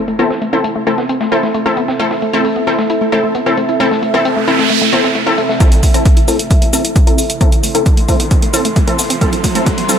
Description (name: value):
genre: driving peak-time techno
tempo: 133 BPM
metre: 4/4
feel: straight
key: A minor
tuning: A4 = 440 Hz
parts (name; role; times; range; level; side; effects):
- sub drop, noise sweep and riser; sound effects; 0.0-0.2, 4.2-10.0 s; none; -21 LUFS; right 5 dB; none
- deep dark ambient pad; texture; 0.5-10.0 s; C4 to C6; -20 LUFS; right 1 dB; chorus, built-in reverb, sidechain pumping
- woody wave-folded pluck; riff; 0.1-9.9 s; A3 to E4; -20 LUFS; left 2 dB; chorus, tube saturation, sidechain pumping, dub echo
- dusty soul sampler-style drum kit; drums; 0.1-5.6 s; hi-hat, snare drum; -30 LUFS; equal; high-pass filter on snare, low-pass filter on snare, sidechain pumping on hats, high-pass filter on hats, low-pass filter on hats
- rave stab; stabs; 0.2-10.0 s; C4 to A4; -16 LUFS; left 1 dB; chorus, built-in reverb, sidechain pumping, digital delay
- electronic hi-hat and shaker; drums; 5.6-10.0 s; none; -19 LUFS; equal; overdrive, sidechain pumping on hats, sidechain pumping on perc
- electronic kick drum; drums; 5.6-9.8 s; none; -11 LUFS; equal; none
room: light reverb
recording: high-pass filter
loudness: -11 LUFS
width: side -8 dB against mid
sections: 0.0-5.6 A section; 5.6-10.0 B section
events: impact 0.0; filter sweep on synth arpeggio sound 0.0-5.6, 5.6-10.0; noise sweep 4.2-5.6; build-up 5.6-10.0; riser 5.6-10.0; filter sweep 5.6-10.0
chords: 0.0 Am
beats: | 0.19 0.64 1.09 1.54 | 2.00 2.45 2.90 3.35 | 3.80 4.25 4.70 5.15 | 5.61 6.06 6.51 6.96 | 7.41 7.86 8.31 8.76 | 9.21 9.66